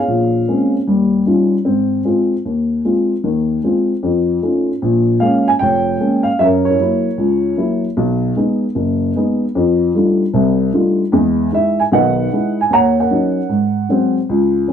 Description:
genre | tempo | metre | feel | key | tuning
solo jazz | 152 BPM | 4/4 | swing 66% on 8ths | Ab major | A4 = 440 Hz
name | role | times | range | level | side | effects
dark upright piano | solo | 0.0-14.7 s | F1 to Bb5 | -13 LUFS | equal | none
room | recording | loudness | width
wet studio ambience, RT60 0.5 s | heard from further back in the room | -13 LUFS | side -8 dB against mid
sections
0.0-4.8 A section; 4.8-14.7 B section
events
none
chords
0.1 Bbm9; 0.9 Eb9; 1.7 Ab6; 4.0 F7b13; 4.8 Bbm7; 6.4 Gb7; 8.0 B6; 9.6 F13; 11.1 Emaj7; 12.7 Ebm7; 13.5 Ab7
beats
| 0.08 0.48 0.87 1.26 | 1.66 2.05 2.45 2.84 | 3.24 3.63 4.03 4.42 | 4.82 5.21 5.60 6.00 | 6.39 6.79 7.18 7.58 | 7.97 8.37 8.76 9.16 | 9.55 9.95 10.34 10.74 | 11.13 11.53 11.92 12.32 | 12.71 13.11 13.50 13.89 | 14.29 14.69

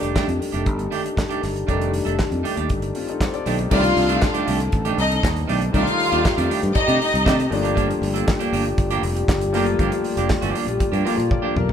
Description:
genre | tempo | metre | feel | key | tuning
disco | 118 BPM | 4/4 | straight | C dorian | A4 = 439 Hz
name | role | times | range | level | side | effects
clean electric guitar | accompaniment | 0.0-11.7 s | Eb3 to A4 | -26 LUFS | right 6 dB | none
clear concert grand piano | accompaniment | 0.0-11.7 s | Eb3 to F5 | -27 LUFS | left 5 dB | none
mellow French horn section | sustained chords | 0.0-11.7 s | Eb3 to A4 | -27 LUFS | left 2 dB | none
fingered electric bass | bass | 0.0-11.7 s | F1 to C3 | -24 LUFS | equal | none
damped 70s drum kit | drums | 0.0-11.7 s | crash cymbal, handclaps, hi-hat, kick drum, snare drum, toms | -24 LUFS | equal | none
warm studio string section | second line | 3.7-7.5 s | Eb4 to F5 | -22 LUFS | left 1 dB | none
room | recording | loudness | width
moderate large studio reverb, RT60 1.4 s | band playing live in one room | -18 LUFS | side -8 dB against mid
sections
0.0-3.7 A section; 3.7-11.7 B section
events
grand piano fill 10.8-11.7; drum fill 11.3-11.7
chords
0.0 F13; 3.7 Cm69; 7.5 Gm7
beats
0.15 0.66 1.17 | 1.68 2.19 2.70 3.21 | 3.71 4.22 4.73 5.23 | 5.74 6.25 6.75 7.26 | 7.76 8.27 8.78 9.28 | 9.79 10.30 10.80 11.31

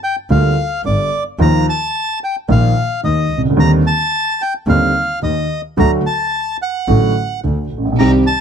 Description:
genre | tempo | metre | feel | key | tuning
tango | 109 BPM | 4/4 | rubato | unclear | A4 = 440 Hz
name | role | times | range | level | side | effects
bandoneon | melody | 0.0-8.4 s | D5 to Bb5 | -18 LUFS | equal | plate reverb
warm baby grand piano | accompaniment | 0.3-8.2 s | G1 to G4 | -15 LUFS | right 1 dB | none
clear double bass | bass | 0.3-8.2 s | G1 to Eb2 | -17 LUFS | equal | none
rich chamber string section | stabs | 8.0-8.2 s | C4 to G4 | -24 LUFS | left 2 dB | none
room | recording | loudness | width
light reverb | dark, warm production | -13 LUFS | side -7 dB against mid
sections
0.0-8.4 A section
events
none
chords
0.0 Gm7; 1.4 Ebsus2; 3.6 Cmadd9/Eb; 5.8 D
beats
0.30 0.85 | 1.40 1.94 2.49 3.03 | 3.58 4.12 4.67 5.22 | 5.77 6.32 6.88 7.43 | 7.98

